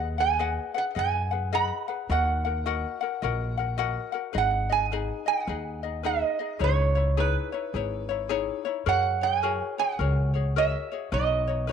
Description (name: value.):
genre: Hawaiian.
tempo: 106 BPM.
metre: 4/4.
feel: swing 62% on 8ths.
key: B major.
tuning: A4 = 440 Hz.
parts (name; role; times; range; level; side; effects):
ukulele; accompaniment; 0.0-11.7 s; D#4 to F#5; -30 LUFS; left 12 dB; none.
upright bass; bass; 0.0-11.7 s; G#1 to F#2; -28 LUFS; equal; none.
metal-body resonator slide guitar; melody; 0.2-11.7 s; B4 to B5; -27 LUFS; right 8 dB; slapback echo.
room: moderate spring reverb, RT60 1.9 s, small room reverb.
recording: 1960s-style stereo with parts hard left and right.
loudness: -24 LUFS.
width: side -7 dB against mid.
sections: 0.0-11.7 A section.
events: none.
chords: 0.0 B6/D#; 2.1 D#m; 4.4 G#m; 6.6 C#madd9; 8.9 F#add9; 11.1 Badd9.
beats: 0.40 0.96 1.53 | 2.09 2.66 3.23 3.79 | 4.36 4.92 5.48 6.05 | 6.61 7.18 7.74 8.30 | 8.87 9.43 9.99 10.56 | 11.12 11.69.